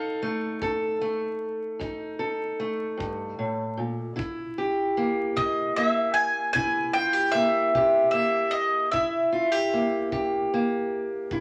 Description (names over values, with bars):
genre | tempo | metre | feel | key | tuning
acoustic country blues, solo or duo | 50 BPM (dotted quarters) | 12/8 | straight | unclear | A4 = 444 Hz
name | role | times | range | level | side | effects
mandolin | melody | 0.0-11.4 s | Eb5 to Ab5 | -25 LUFS | equal | none
fingerpicked steel-string acoustic guitar | accompaniment | 0.0-11.4 s | F2 to A4 | -29 LUFS | equal | none
kick drum | drums | 0.6-11.4 s | none | -43 LUFS | equal | none
room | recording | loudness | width
wet large studio reverb, RT60 1.2 s | tape saturation, vinyl crackle | -26 LUFS | mono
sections
0.0-11.4 A section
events
none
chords
0.0 F7; 4.2 C7